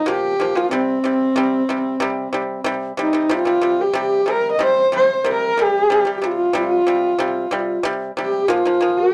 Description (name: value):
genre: mongolian traditional, Mongolian folk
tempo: 93 BPM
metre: 4/4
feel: straight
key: C yu mode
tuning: A4 = 443 Hz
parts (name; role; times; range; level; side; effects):
- rich horsehead fiddle; melody; 0.0-9.1 s; C4 to Eb5; -21 LUFS; equal; none
- pipa; arpeggios; 0.1-9.1 s; Bb2 to G3; -25 LUFS; equal; slapback echo
- mellow low xiao; second line; 3.0-9.1 s; Eb4 to C5; -23 LUFS; equal; none
room: moderate studio reverb, RT60 0.5 s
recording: dry, close 1970s-style studio recording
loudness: -19 LUFS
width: mono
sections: 0.0-3.3 A section; 3.3-9.1 B section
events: none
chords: 0.0 Bb5; 0.7 C5; 8.5 Bb5